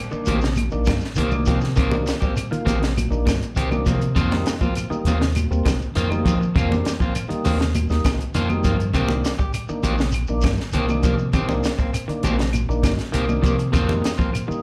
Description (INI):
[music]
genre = afrobeat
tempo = 100 BPM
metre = 4/4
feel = straight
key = C minor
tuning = A4 = 439 Hz
[part]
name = semi-hollow electric guitar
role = arpeggios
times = 0.0-14.6 s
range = C3 to G3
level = -32 LUFS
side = equal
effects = none
[part]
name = tonewheel organ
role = accompaniment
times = 0.1-14.6 s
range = Eb3 to F4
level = -30 LUFS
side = equal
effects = slow rotary speaker, slapback echo
[part]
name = electric guitar at the edge of break-up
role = stabs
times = 0.1-14.5 s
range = Eb3 to G4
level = -29 LUFS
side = equal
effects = spring reverb, slapback echo
[part]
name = deep dub fingered electric bass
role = bass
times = 0.1-14.5 s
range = Bb1 to F3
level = -26 LUFS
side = equal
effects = none
[part]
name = shekere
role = percussion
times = 0.1-14.6 s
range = none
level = -34 LUFS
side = equal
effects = none
[part]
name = compact cocktail drum kit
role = drums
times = 0.3-14.5 s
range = hi-hat, kick drum, snare drum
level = -26 LUFS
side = equal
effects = none
[part]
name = congas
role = percussion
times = 0.3-14.3 s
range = none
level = -30 LUFS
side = equal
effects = none
[part]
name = claves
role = percussion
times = 0.6-14.5 s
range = none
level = -38 LUFS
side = equal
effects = none
[sound]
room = moderate club reverb, RT60 0.5 s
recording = live gig heard through the venue's PA, club reverb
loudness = -21 LUFS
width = mono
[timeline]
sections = 0.0-14.6 A section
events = none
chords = 0.0 Cm7; 4.2 F7sus4; 8.9 Cm7; 13.7 F7sus4